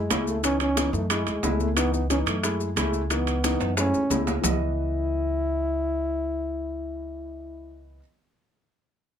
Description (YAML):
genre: Afro-Cuban jazz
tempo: 180 BPM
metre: 4/4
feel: straight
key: C# minor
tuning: A4 = 440 Hz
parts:
  - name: dark trombone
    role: melody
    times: 0.0-7.9 s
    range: G#3 to E4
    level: -28 LUFS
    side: equal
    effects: none
  - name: upright bass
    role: bass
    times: 0.0-8.0 s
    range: C#2 to F#2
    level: -30 LUFS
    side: equal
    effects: none
  - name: dark upright piano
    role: accompaniment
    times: 0.1-8.0 s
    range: E3 to D#5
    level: -29 LUFS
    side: equal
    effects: none
  - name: bongos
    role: percussion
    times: 0.1-4.5 s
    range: none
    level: -34 LUFS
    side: left 6 dB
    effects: none
  - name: congas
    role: percussion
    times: 0.1-4.5 s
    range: none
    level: -33 LUFS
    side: left 4 dB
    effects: none
  - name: maracas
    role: percussion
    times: 0.1-4.5 s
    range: none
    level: -32 LUFS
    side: left 6 dB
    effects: none
  - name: timbales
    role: percussion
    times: 0.1-4.5 s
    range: none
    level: -30 LUFS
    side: right 6 dB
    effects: none
room: light reverb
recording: close, detailed microphones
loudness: -23 LUFS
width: side -8 dB against mid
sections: 0.0-4.4 A section; 4.4-7.1 B section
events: drum fill 3.6-4.4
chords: 0.4 C#m7; 1.1 F#m7; 1.8 C#m7; 2.4 F#m7; 3.1 C#m7; 3.8 F#m7; 4.4 C#m7